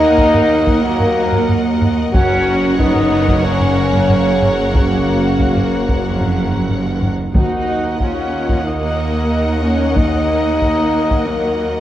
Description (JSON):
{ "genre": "cinematic, epic orchestral film score", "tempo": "92 BPM", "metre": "4/4", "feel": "straight", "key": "Eb minor", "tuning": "A4 = 440 Hz", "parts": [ { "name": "clear symphonic violin section", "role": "melody", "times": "0.0-11.8 s", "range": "Gb5", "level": "-27 LUFS", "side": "left 2 dB", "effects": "none" }, { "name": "clear symphonic violin section", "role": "second line", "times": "0.0-11.8 s", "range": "Bb4 to Eb5", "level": "-26 LUFS", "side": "left 3 dB", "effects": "none" }, { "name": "rich symphonic viola section", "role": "accompaniment", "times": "0.0-11.8 s", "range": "Gb3 to Gb4", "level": "-25 LUFS", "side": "right 1 dB", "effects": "none" }, { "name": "dark trombone section", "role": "sustained chords", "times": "0.0-11.8 s", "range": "Db3 to Db4", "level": "-24 LUFS", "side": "right 2 dB", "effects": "none" }, { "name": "mellow French horn section", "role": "sustained chords", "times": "0.0-11.8 s", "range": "Bb3 to Gb4", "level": "-19 LUFS", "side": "left 3 dB", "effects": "none" }, { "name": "dark trumpet section", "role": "stabs", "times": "0.0-11.8 s", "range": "Bb4 to Gb5", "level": "-23 LUFS", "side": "right 2 dB", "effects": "none" }, { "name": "clear symphonic cello section", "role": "bass", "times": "0.0-11.8 s", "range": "Eb2 to Gb2", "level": "-22 LUFS", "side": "right 2 dB", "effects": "none" }, { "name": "clear symphonic double bass section", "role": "bass", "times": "0.0-11.8 s", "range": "Gb1 to Eb2", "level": "-21 LUFS", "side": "right 2 dB", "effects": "none" }, { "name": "solo taiko drums", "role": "drums", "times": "0.2-11.7 s", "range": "none", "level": "-19 LUFS", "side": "equal", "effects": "none" }, { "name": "timpani", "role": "percussion", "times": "7.3-8.3 s", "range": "Eb3", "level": "-27 LUFS", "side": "equal", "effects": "none" } ], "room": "wet scoring stage reverb, RT60 1.8 s", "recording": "worn, warbling old tape, cassette tape, warbly pitch drift", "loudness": "-13 LUFS", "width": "side -12 dB against mid", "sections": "0.0-11.8 A section", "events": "none", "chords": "0.0 Ebm; 2.1 Gb; 7.3 Ebm" }